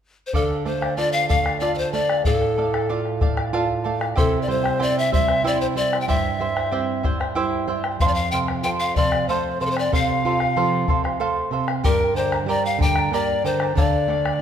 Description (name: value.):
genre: andean folk, Andean ensemble.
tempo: 63 BPM (dotted quarters).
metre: 6/8.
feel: straight.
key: D minor.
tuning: A4 = 440 Hz.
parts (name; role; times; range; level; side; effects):
bright polished pan flute; melody; 0.3-14.4 s; A4 to G5; -22 LUFS; left 2 dB; none.
charango; accompaniment; 0.3-14.4 s; E4 to Bb5; -25 LUFS; right 4 dB; none.
nylon-string guitar; accompaniment; 0.3-14.4 s; F2 to G5; -26 LUFS; right 4 dB; none.
bombo; percussion; 0.3-14.4 s; none; -25 LUFS; left 2 dB; none.
room: moderate concert hall reverb, RT60 2.3 s.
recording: minimal, uncompressed stereo recording, faint mains hum.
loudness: -19 LUFS.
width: side -8 dB against mid.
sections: 0.3-14.4 A section.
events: nylon-string guitar fill 7.0-8.0.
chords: 0.3 Dm; 4.2 C; 8.0 F; 11.8 Gm; 13.8 Dm.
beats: | 0.34 1.29 | 2.25 3.21 | 4.17 5.13 | 6.08 7.04 | 8.00 8.96 | 9.92 10.88 | 11.84 12.80 | 13.76.